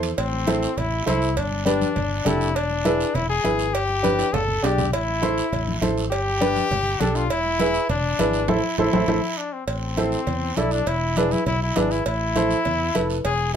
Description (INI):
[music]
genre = latin, cumbia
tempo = 202 BPM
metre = 4/4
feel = straight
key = A minor, A harmonic minor from 9.7 s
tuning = A4 = 440 Hz
[part]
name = warm upright piano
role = accompaniment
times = 0.0-13.2 s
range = D4 to D5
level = -23 LUFS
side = right 1 dB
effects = none
[part]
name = fingered electric bass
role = bass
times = 0.0-13.6 s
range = E1 to E2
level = -27 LUFS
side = equal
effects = none
[part]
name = guiro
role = percussion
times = 0.0-13.5 s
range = none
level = -35 LUFS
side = right 6 dB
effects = none
[part]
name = timbales and cowbell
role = percussion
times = 0.0-13.4 s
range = none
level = -31 LUFS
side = right 5 dB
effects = none
[part]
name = warm trumpet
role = second line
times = 0.2-13.6 s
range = C4 to A4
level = -24 LUFS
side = left 3 dB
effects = none
[part]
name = congas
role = percussion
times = 0.3-13.1 s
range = none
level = -28 LUFS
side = left 2 dB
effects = none
[sound]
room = moderate studio ambience, RT60 0.5 s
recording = none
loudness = -20 LUFS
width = side -8 dB against mid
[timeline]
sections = 0.2-9.7 A section; 9.7-13.6 B section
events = drum fill 4.0-4.9; band accent 8.5-9.7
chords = 0.2 Am; 1.4 G; 2.6 E7; 3.7 G; 4.9 Am; 6.1 G; 7.3 E7; 8.5 Am; 10.9 E; 12.1 Am